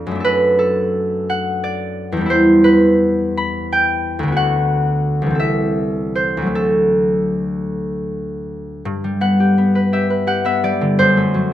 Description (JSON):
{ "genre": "classical, solo harp piece", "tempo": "50-62 BPM (dotted quarters)", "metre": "6/8", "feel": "rubato", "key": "G major", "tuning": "A4 = 440 Hz", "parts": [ { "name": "concert harp", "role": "solo", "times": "0.0-11.5 s", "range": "C2 to B5", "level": "-15 LUFS", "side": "equal", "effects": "none" } ], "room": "light reverb", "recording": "close, detailed microphones", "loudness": "-14 LUFS", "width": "side -12 dB against mid", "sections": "0.0-8.8 A section; 8.8-11.5 B section", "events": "none", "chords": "0.2 D/F#; 2.3 Em; 4.4 Bm/D; 5.4 Am/C; 6.5 D; 8.8 G; 11.0 D7/F#" }